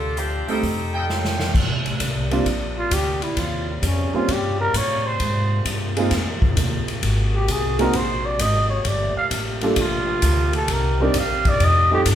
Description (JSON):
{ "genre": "jazz, big band swing", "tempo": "131 BPM", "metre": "4/4", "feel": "swing 68% on 8ths", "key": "Bb major", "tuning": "A4 = 438 Hz", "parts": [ { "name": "clear saxophone section", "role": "melody", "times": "0.0-1.4 s", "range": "F3 to A4", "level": "-27 LUFS", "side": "left 1 dB", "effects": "none" }, { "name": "upright bass", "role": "bass", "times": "0.0-12.2 s", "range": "G1 to A2", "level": "-23 LUFS", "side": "equal", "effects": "none" }, { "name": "swinging big-band drum kit", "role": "drums", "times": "0.2-12.2 s", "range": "crash cymbal, hi-hat, kick drum, ride cymbal, snare drum", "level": "-24 LUFS", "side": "left 1 dB", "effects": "none" }, { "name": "warm concert grand piano", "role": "accompaniment", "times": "0.5-12.0 s", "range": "G3 to Bb4", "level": "-23 LUFS", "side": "right 3 dB", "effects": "none" }, { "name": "clear trumpet section", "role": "stabs", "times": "0.5-1.5 s", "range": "A4 to G5", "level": "-28 LUFS", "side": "right 2 dB", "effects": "none" }, { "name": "bright trombone section", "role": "sustained chords", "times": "1.5-12.2 s", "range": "C3 to Ab4", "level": "-31 LUFS", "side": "equal", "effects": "none" }, { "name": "growling trumpet", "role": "melody", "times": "2.8-12.0 s", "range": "Bb3 to F5", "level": "-22 LUFS", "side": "equal", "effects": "none" } ], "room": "moderate large studio reverb, RT60 1.2 s", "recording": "band playing live in one room", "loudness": "-18 LUFS", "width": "side -10 dB against mid", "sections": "0.0-1.5 A section; 1.5-12.2 B section", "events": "drum fill 1.1-1.5; trumpet solo 1.5-12.2", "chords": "0.0 Bb69 (rootless); 0.6 F9; 1.5 Bb69; 3.4 Eb13; 5.2 Ab69; 7.0 Ab9; 8.9 Gm9; 10.7 Cm7; 11.6 F9" }